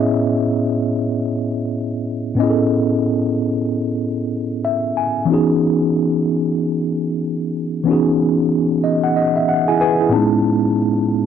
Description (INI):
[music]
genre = R&B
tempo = 93 BPM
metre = 4/4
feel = swing 60% on 16ths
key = unclear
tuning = A4 = 441 Hz
[part]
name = mellow tine electric piano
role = solo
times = 0.0-11.3 s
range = A2 to A5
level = -16 LUFS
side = equal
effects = medium stereo tremolo
[sound]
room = light reverb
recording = dry, close 1970s-style studio recording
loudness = -16 LUFS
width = side -8 dB against mid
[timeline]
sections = 0.0-11.3 A section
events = tine electric piano fill 4.3-5.3, 8.5-10.4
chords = 0.0 Amaj9; 5.3 Emaj9; 10.1 Amaj9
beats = | 0.12 0.76 1.41 2.05 | 2.70 3.34 3.99 4.63 | 5.28 5.92 6.57 7.21 | 7.86 8.51 9.15 9.79 | 10.44 11.09